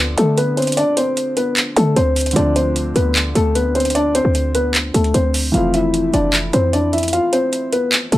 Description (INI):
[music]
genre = hip hop, trap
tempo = 151 BPM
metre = 4/4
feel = half-time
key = D dorian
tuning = A4 = 439 Hz
[part]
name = felt-muted upright piano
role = accompaniment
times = 0.0-8.2 s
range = D3 to E4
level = -25 LUFS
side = equal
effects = none
[part]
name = short 808-style bass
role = bass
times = 0.0-8.2 s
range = F1 to D3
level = -19 LUFS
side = equal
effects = none
[part]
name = dark concert grand piano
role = melody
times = 0.2-8.2 s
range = A3 to F5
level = -17 LUFS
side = left 1 dB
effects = none
[part]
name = trap drum kit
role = drums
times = 0.2-8.2 s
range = handclaps, hi-hat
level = -20 LUFS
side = right 1 dB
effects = none
[sound]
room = studio ambience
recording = dry, gritty hardware recording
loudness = -14 LUFS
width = side -15 dB against mid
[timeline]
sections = 0.0-8.2 A section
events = none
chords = 0.0 Dm7; 5.5 Fmaj7